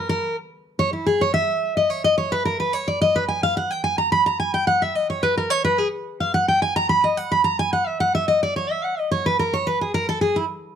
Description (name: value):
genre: bluegrass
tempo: 216 BPM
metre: 4/4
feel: straight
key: B major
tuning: A4 = 436 Hz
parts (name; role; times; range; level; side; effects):
- picked steel-string acoustic guitar; solo; 0.0-10.4 s; E4 to B5; -19 LUFS; equal; none
room: light reverb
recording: close, detailed microphones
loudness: -19 LUFS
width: side -8 dB against mid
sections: 0.0-4.1 A section; 4.1-10.8 A section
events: steel-string acoustic guitar solo 0.0-10.8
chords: none